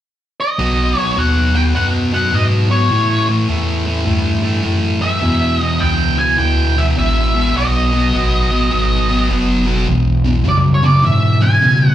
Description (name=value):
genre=rock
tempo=103 BPM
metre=4/4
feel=swing 66% on 8ths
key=unclear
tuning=A4 = 440 Hz
part: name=octave-fuzz lead guitar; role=melody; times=0.4-11.9 s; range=C#5 to G#5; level=-18 LUFS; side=right 1 dB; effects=distortion, slapback echo, digital delay
part: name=thick fuzz guitar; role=riff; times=0.6-11.9 s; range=E2 to B3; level=-16 LUFS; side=equal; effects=distortion, slapback echo
part: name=sub bass with octave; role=bass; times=0.6-11.9 s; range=F#1 to B2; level=-17 LUFS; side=equal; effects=none
room=digital ambience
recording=live gig heard through the venue's PA, club reverb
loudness=-12 LUFS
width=side -12 dB against mid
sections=0.6-9.9 A section; 9.9-11.9 B section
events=none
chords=0.0 N.C.; 0.6 B; 2.9 A5; 5.2 E5; 7.6 B7; 9.9 E